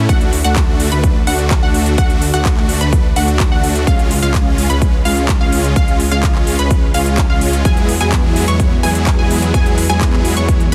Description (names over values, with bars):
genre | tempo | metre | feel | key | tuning
EDM, festival progressive house | 127 BPM | 4/4 | straight | unclear | A4 = 440 Hz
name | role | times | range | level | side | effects
unison pluck | arpeggios | 0.0-10.7 s | E#5 to C#6 | -25 LUFS | equal | cassette tape, sidechain pumping, tape echo
supersaw chords | riff | 0.0-10.7 s | F#3 to C#5 | -20 LUFS | equal | sidechain pumping, tape echo
detuned saw bass | bass | 0.0-10.7 s | C#2 to E2 | -20 LUFS | equal | sidechain pumping
big-room dance drum kit | drums | 0.1-10.7 s | handclaps, hi-hat | -25 LUFS | equal | none
electronic kick drum | drums | 0.1-10.6 s | none | -16 LUFS | equal | none
room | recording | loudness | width
digital ambience | heavily compressed radio sound, multiband compression | -14 LUFS | mono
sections
0.0-10.7 A section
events
none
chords
0.1 D; 3.9 C#; 7.7 Eadd9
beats
| 0.09 0.56 1.04 1.51 | 1.98 2.45 2.93 3.40 | 3.87 4.34 4.82 5.29 | 5.76 6.23 6.71 7.18 | 7.65 8.12 8.60 9.07 | 9.54 10.01 10.49